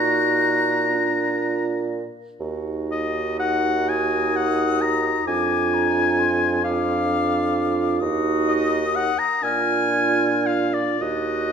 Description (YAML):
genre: classical, slow romantic movement for wind quintet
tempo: 37-45 BPM (dotted quarters)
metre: 6/8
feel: rubato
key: Eb minor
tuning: A4 = 441 Hz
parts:
  - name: silver concert flute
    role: melody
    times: 0.0-11.5 s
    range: Bb5 to Gb6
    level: -28 LUFS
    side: left 8 dB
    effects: none
  - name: clear oboe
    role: second line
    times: 0.0-11.5 s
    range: D5 to Bb5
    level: -23 LUFS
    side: left 4 dB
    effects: none
  - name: dark French horn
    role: accompaniment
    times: 0.0-11.5 s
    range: D4 to Eb4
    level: -28 LUFS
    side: right 1 dB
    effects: none
  - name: warm clarinet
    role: accompaniment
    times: 0.0-11.5 s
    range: F4 to Gb4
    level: -26 LUFS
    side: right 8 dB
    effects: none
  - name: mellow bassoon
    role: bass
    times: 0.0-11.5 s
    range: Eb2 to Bb2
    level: -26 LUFS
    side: right 3 dB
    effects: none
room: wet recital hall reverb, RT60 1.7 s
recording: minimal, uncompressed stereo recording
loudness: -19 LUFS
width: side -7 dB against mid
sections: 0.0-11.5 A section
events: none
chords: 0.0 Ebm/Bb; 0.9 Bb; 2.4 Ebm; 5.3 Ddim/F; 8.0 Ebm; 9.4 Bb7; 11.0 Ebm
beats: 0.91 | 2.41 3.88 | 5.26 6.63 | 8.00 9.42 | 11.00